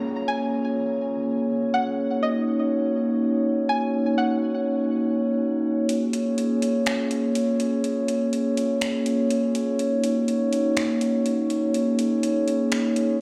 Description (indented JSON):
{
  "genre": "hip hop, atmospheric cloud-rap",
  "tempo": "123 BPM",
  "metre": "4/4",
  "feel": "half-time",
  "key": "Bb minor",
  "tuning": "A4 = 440 Hz",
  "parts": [
    { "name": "string-like resonator pluck", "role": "melody", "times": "0.0-5.8 s", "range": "Eb5 to Ab5", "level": "-32 LUFS", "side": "equal", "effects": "chorus, low-pass filter, digital delay" },
    { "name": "glass harmonica", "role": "sustained chords", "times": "0.0-13.2 s", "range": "Bb3 to Db5", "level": "-24 LUFS", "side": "equal", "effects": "none" },
    { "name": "downlifter", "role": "sound effects", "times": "0.0-2.0 s", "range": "none", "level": "-48 LUFS", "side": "equal", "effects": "none" },
    { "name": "smooth R&B drum kit", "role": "drums", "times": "5.9-13.1 s", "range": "finger snaps, hi-hat", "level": "-35 LUFS", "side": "equal", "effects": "none" }
  ],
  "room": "light reverb, digital ambience",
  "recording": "played on a big sound system in a bare room, stone room reverb",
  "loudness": "-24 LUFS",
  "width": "mono",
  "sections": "0.0-5.9 A section; 5.9-13.2 B section",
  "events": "kick muted 5.9-13.2",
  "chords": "0.0 Bbm7; 2.0 Gb6; 5.9 Bbm7; 9.8 Gb6"
}